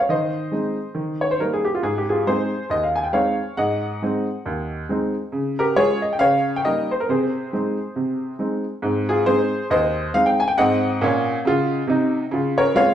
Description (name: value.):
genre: jazz, stride piano.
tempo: 137 BPM.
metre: 4/4.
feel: swing 58% on 8ths.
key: Ab major.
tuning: A4 = 440 Hz.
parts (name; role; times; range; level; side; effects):
clear upright piano; solo; 0.0-12.9 s; Eb2 to Ab5; -19 LUFS; equal; none.
room: moderate large studio reverb, RT60 1.0 s.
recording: band playing live in one room.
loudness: -19 LUFS.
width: side -10 dB against mid.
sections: 0.0-8.8 A section; 8.8-12.9 A section.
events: none.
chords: 0.1 Ab/Eb; 1.0 Eb; 1.8 Ab; 3.6 Ab7; 5.3 Db; 6.2 Eb7/Db; 7.1 Ab/C; 8.8 Ab; 10.6 Ab7; 12.3 Dbmaj7.